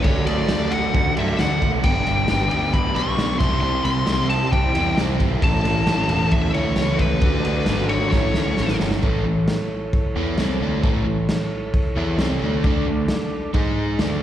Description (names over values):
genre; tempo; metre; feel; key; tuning
garage rock duo or trio; 133 BPM; 4/4; straight; A mixolydian; A4 = 440 Hz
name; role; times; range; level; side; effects
fuzz lead guitar; melody; 0.0-8.8 s; B4 to C#6; -24 LUFS; left 2 dB; distortion, slapback echo, digital delay
overdriven combo organ; sustained chords; 0.0-14.2 s; D4 to D#5; -31 LUFS; right 1 dB; none
crunchy overdriven guitar; riff; 0.0-14.2 s; G2 to G#4; -24 LUFS; equal; slapback echo
fuzz picked electric bass; bass; 0.0-14.2 s; E1 to G#2; -24 LUFS; equal; overdrive
crunchy breakbeat drum kit; drums; 0.0-14.1 s; crash cymbal, kick drum, ride cymbal, snare drum; -23 LUFS; equal; none
room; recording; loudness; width
light reverb, small room ambience; live gig heard through the venue's PA, recital hall reverb; -18 LUFS; side -11 dB against mid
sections
0.0-9.0 A section; 9.0-14.2 B section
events
drum fill 8.1-9.0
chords
0.0 D; 1.8 G; 3.4 C; 5.4 A; 7.2 D; 8.1 A; 12.6 D5; 13.5 G#5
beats
| 0.04 0.49 0.93 1.38 | 1.83 2.28 2.72 3.17 | 3.62 4.07 4.52 4.97 | 5.42 5.87 6.32 6.77 | 7.22 7.67 8.12 8.57 | 9.02 9.47 9.93 10.38 | 10.83 11.28 11.73 12.19 | 12.64 13.09 13.54 13.99